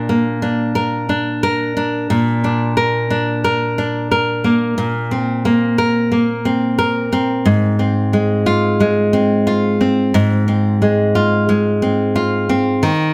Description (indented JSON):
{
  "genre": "pop",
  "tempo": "90 BPM",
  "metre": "4/4",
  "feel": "straight",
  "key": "unclear",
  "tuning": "A4 = 442 Hz",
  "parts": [
    { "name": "nylon-string guitar", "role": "solo", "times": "0.0-13.1 s", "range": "Ab2 to Bb4", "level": "-16 LUFS", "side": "equal", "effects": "digital delay" }
  ],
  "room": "moderate studio reverb, RT60 0.7 s",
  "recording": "none",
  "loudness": "-16 LUFS",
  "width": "mono",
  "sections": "0.0-2.1 A section; 2.1-4.8 B section; 4.8-13.1 C section",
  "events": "none",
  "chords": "0.0 Bb; 4.8 Bbsus2; 7.5 Fm/Ab"
}